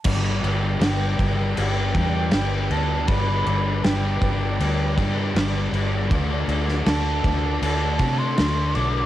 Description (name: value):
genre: rock, shoegaze and dream pop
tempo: 79 BPM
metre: 4/4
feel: straight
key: G major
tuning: A4 = 440 Hz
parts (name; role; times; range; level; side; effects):
- overdriven electric guitar; riff; 0.0-9.1 s; G2 to G4; -32 LUFS; right 10 dB; reverse reverb, cassette tape
- thick fuzz guitar; riff; 0.0-9.1 s; G2 to D4; -28 LUFS; left 7 dB; distortion, analog chorus, cassette tape
- loose indie drum kit; drums; 0.0-8.9 s; crash cymbal, kick drum, snare drum; -24 LUFS; equal; cassette tape
- warm analog pad; sustained chords; 0.1-9.1 s; A4 to D6; -35 LUFS; right 1 dB; chorus, cassette tape
- vintage muted fingered electric bass; bass; 0.1-9.1 s; G1 to C3; -24 LUFS; equal; tube saturation
- breathy mellow jazz flute; melody; 0.8-9.1 s; G5 to D6; -29 LUFS; right 2 dB; cassette tape, analog delay
room: small room ambience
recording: home recording on cassette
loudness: -20 LUFS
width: side -13 dB against mid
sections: 0.0-9.1 A section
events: none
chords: 0.0 G; 6.1 D